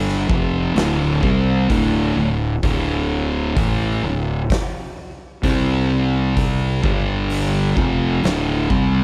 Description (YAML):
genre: stoner and doom metal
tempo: 64 BPM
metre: 4/4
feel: straight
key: D minor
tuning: A4 = 440 Hz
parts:
  - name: thick fuzz guitar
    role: riff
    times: 0.0-9.0 s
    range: D2 to C4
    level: -21 LUFS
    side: equal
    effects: distortion
  - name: fuzz fingered electric bass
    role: bass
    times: 0.0-9.0 s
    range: D1 to C2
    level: -25 LUFS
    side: equal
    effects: overdrive
  - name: oversized low-tuned drum kit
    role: drums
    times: 0.1-8.9 s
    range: hi-hat, kick drum, snare drum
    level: -26 LUFS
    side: equal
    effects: none
room: small room ambience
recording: none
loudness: -19 LUFS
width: mono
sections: 0.0-9.0 A section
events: none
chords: 0.3 Dm; 5.4 C5; 6.8 G5; 7.8 Dm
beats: 0.76 1.70 | 2.63 3.57 4.50 5.43 | 6.37 7.30 8.23